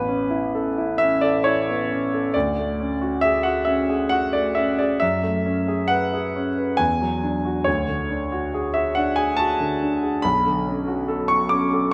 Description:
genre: classical, impressionist solo piano.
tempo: 68 BPM.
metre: 3/4.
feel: uneven beats, rubato.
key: unclear.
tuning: A4 = 439 Hz.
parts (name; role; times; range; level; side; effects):
clear grand piano; solo; 0.0-11.9 s; A1 to D6; -22 LUFS; equal; none.
room: wet concert hall reverb, RT60 1.8 s.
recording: none.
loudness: -22 LUFS.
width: mono.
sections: 0.0-11.9 A section.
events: none.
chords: 0.0 Aadd9; 2.3 Dmaj7#11; 5.0 F#m11; 6.8 E9; 7.7 Dmaj7#11; 10.2 Bm9.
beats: 0.54 1.45 | 2.35 3.23 4.12 | 5.02 5.91 6.80 | 7.67 8.53 9.38 | 10.24 11.08.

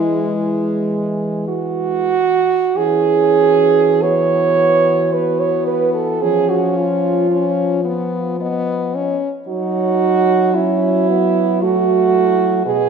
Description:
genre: classical, lyrical piece for horn quartet.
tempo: 44-60 BPM.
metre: 3/4.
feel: rubato.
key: E major.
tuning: A4 = 440 Hz.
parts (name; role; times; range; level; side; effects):
dark French horn; melody; 0.0-12.9 s; E4 to D#5; -24 LUFS; left 6 dB; none.
warm French horn; second line; 0.0-12.9 s; G#3 to C#5; -15 LUFS; right 7 dB; none.
clear French horn; accompaniment; 0.0-12.9 s; G#3 to D#4; -22 LUFS; left 5 dB; none.
dark French horn; bass; 0.0-12.9 s; B2 to F#3; -22 LUFS; right 1 dB; none.
room: moderate scoring stage reverb, RT60 1.9 s.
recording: minimal, uncompressed stereo recording.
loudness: -14 LUFS.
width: side -6 dB against mid.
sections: 0.0-2.8 A section; 2.8-12.9 B section.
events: none.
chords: 0.0 E; 6.2 C#7/E#; 9.5 F#m7.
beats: 0.17 1.50 | 2.77 4.03 5.13 | 6.23 7.32 8.41 | 9.48 10.55 11.63 | 12.66.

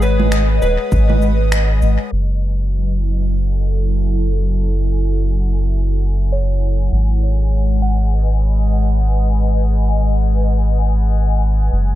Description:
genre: ambient dub.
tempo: 100 BPM.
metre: 4/4.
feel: swing 59% on 16ths.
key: unclear.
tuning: A4 = 440 Hz.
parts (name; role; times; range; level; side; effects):
electric slide guitar; melody; 0.0-1.5 s; B4; -23 LUFS; left 2 dB; dub echo.
airy breathy pad; sustained chords; 0.0-12.0 s; F#3 to G#5; -24 LUFS; left 2 dB; chorus, phaser.
soft synth bell; arpeggios; 0.0-2.1, 6.3-11.7 s; C#5 to F#5; -32 LUFS; right 1 dB; chorus, phaser, low-pass filter, dub echo.
soft dub sub bass; bass; 0.0-12.0 s; D#1 to G#1; -15 LUFS; equal; none.
electronic cabasa, congas and finger snaps; drums; 0.0-2.0 s; none; -22 LUFS; right 5 dB; overdrive, dub echo.
electronic kick drum; drums; 0.9-1.1 s; none; -18 LUFS; equal; overdrive.
room: digital ambience.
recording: dark, warm production, low-pass filter.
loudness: -14 LUFS.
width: side -14 dB against mid.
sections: 0.0-2.1 A section; 2.1-12.0 B section.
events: band accent 1.5-1.8; filter sweep on synth bell 2.1-12.0; filter sweep 2.1-12.0.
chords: 0.0 G#m7; 2.1 F#m9; 6.9 G#m7.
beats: 0.32 0.92 1.52 | 2.12 2.72 3.32 3.92 | 4.52 5.12 5.72 6.32 | 6.92 7.52 8.12 8.72 | 9.32 9.92 10.52 11.12 | 11.72.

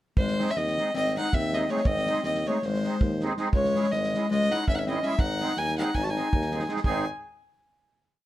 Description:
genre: balkan folk, Balkan wedding band.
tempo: 324 BPM (eighths).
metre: 9/8.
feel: straight.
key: G# phrygian dominant.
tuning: A4 = 440 Hz.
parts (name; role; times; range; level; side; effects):
rich fiddle; melody; 0.2-7.1 s; B#4 to A5; -28 LUFS; equal; plate reverb.
warm clarinet; second line; 0.2-7.1 s; G#3 to F#4; -30 LUFS; left 4 dB; none.
clear tuba; bass; 0.2-7.1 s; G#1 to D#2; -32 LUFS; right 1 dB; none.
loose indie drum kit; percussion; 0.2-7.0 s; kick drum, snare drum; -30 LUFS; right 1 dB; none.
musette accordion; accompaniment; 0.4-7.1 s; G#3 to G#4; -32 LUFS; right 3 dB; none.
room: moderate studio reverb, RT60 0.6 s.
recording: dark, warm production.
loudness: -24 LUFS.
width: side -14 dB against mid.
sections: 0.2-6.9 A section; 6.9-8.3 final chord.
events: none.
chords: 0.2 G#; 3.5 C#m; 5.2 G#.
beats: | 0.18 0.36 0.55 0.74 0.92 1.11 1.30 1.48 1.67 | 1.86 2.04 2.23 2.42 2.60 2.79 2.97 3.16 3.35 | 3.53 3.72 3.90 4.09 4.27 4.46 4.64 4.83 5.01 | 5.20 5.38 5.56 5.75 5.93 6.12 6.30 6.49 6.67 | 6.86 7.04.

